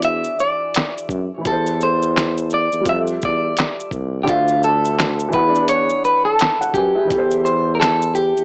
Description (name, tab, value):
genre	lo-fi hip hop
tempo	85 BPM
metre	4/4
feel	swing 59% on 16ths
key	unclear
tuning	A4 = 440 Hz
part	clean electric guitar	melody	0.0-8.4 s	F4 to E5	-17 LUFS	equal	none
part	dark upright piano	accompaniment	0.0-8.4 s	D3 to G#5	-24 LUFS	equal	none
part	warm tuba	bass	0.0-8.4 s	C2 to F#2	-22 LUFS	equal	transformer saturation
part	lo-fi sampler-style drum kit	drums	0.0-8.4 s	handclaps, hi-hat, kick drum, shaker, snare drum	-21 LUFS	equal	vintage 12-bit sampler grit
room	little or no reverb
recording	dry, gritty hardware recording, cassette tape, small speaker sound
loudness	-15 LUFS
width	side -28 dB against mid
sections	0.0-8.4 A section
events	none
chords	0.0 E7; 1.5 Am7/E; 2.9 Fmaj9; 4.3 Dm7; 5.3 E7; 7.1 Am7/E